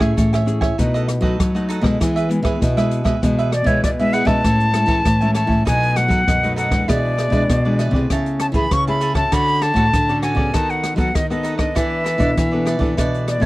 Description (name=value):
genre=samba and choro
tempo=98 BPM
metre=4/4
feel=straight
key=A major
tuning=A4 = 440 Hz
part: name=cavaquinho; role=accompaniment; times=0.0-13.5 s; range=D#4 to A5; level=-26 LUFS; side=right 5 dB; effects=none
part: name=nylon-string guitar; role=accompaniment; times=0.0-13.5 s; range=F#2 to A4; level=-23 LUFS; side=left 2 dB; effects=none
part: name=nylon-string guitar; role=bass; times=0.0-13.5 s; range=A2 to F#3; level=-20 LUFS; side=equal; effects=none
part: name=open jazz drum kit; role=drums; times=0.0-13.5 s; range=hi-hat, kick drum, rim click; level=-22 LUFS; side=equal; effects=none
part: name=silver concert flute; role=melody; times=3.5-13.5 s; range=C#5 to C#6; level=-20 LUFS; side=left 1 dB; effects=none
room=little or no reverb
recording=dry, close 1970s-style studio recording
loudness=-15 LUFS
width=side -18 dB against mid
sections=0.0-4.4 A section; 4.4-13.5 B section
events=none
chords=0.0 Amaj7; 0.8 B7; 2.0 E; 4.4 Amaj7; 5.7 B7; 6.9 E7/B; 8.1 Amaj7/C#; 9.3 Dmaj7; 10.5 B7/D#; 11.8 E7sus4